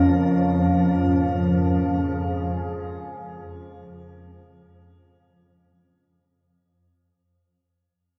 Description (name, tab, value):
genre	dark ambient drone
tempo	free time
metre	none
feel	none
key	unclear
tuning	A4 = 443 Hz
part	dark analog pad	sustained chords	0.0-6.4 s	F3 to F5	-25 LUFS	equal	chorus, phaser, shimmer reverb
part	quartz singing bowl	arpeggios	0.0-6.9 s	none	barely audible	none	none
part	swarming drone	drone	0.0-6.5 s	F2 to F3	-27 LUFS	equal	built-in reverb
part	icy glass pad	texture	0.0-6.4 s	Bb4	-48 LUFS	equal	chorus, built-in reverb, shimmer reverb
room	wet spring reverb, RT60 2.4 s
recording	echo-heavy mix, cassette tape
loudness	-22 LUFS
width	mono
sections	0.0-6.4 A section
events	fade-out on ambient pad 0.0-6.4; fade-out 0.0-6.4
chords	0.0 Db6/F